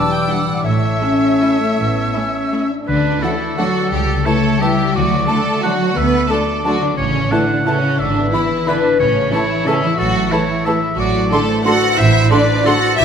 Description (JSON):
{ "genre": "classical, orchestral ballroom waltz", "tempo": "152-194 BPM", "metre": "3/4", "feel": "rubato", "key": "unclear", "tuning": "A4 = 440 Hz", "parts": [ { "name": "warm symphonic violin section", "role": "melody", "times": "0.0-12.7 s", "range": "E5 to C6", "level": "-28 LUFS", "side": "left 3 dB", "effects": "none" }, { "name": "bright silver concert flute", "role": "second line", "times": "0.0-12.7 s", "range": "F#5 to E6", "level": "-25 LUFS", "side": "equal", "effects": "none" }, { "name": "clear oboe", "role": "second line", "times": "0.0-13.0 s", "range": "G4 to F#5", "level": "-22 LUFS", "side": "right 1 dB", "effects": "none" }, { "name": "mellow bassoon", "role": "accompaniment", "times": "0.0-12.8 s", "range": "A2 to A3", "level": "-28 LUFS", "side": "right 3 dB", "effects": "none" }, { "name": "warm symphonic viola section", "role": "accompaniment", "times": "0.0-12.7 s", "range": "D3 to A4", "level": "-26 LUFS", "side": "right 1 dB", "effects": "none" }, { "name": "mellow French horn section", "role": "sustained chords", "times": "0.0-12.8 s", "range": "G3 to F#4", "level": "-23 LUFS", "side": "left 2 dB", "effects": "none" }, { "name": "concert harp", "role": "arpeggios", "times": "0.0-13.0 s", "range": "G#2 to E5", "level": "-22 LUFS", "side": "left 8 dB", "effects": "none" }, { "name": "warm symphonic violin section", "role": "second line", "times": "0.3-13.0 s", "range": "C#4 to F#5", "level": "-20 LUFS", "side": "left 2 dB", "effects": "none" }, { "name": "warm symphonic cello section", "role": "bass", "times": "0.6-13.0 s", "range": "A2 to F#4", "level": "-21 LUFS", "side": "right 3 dB", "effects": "none" }, { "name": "warm symphonic double bass section", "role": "bass", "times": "0.7-13.0 s", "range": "G#1 to D2", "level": "-22 LUFS", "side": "right 4 dB", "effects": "none" } ], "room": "moderate concert hall reverb, RT60 1.9 s", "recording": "none", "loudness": "-13 LUFS", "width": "side -7 dB against mid", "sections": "0.0-2.9 A section; 2.9-13.0 B section", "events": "none", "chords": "0.0 Em7; 0.6 A; 2.9 D; 3.9 A7/C#; 4.9 D; 7.0 A; 8.0 E7/G#; 9.0 A; 11.0 D7/A" }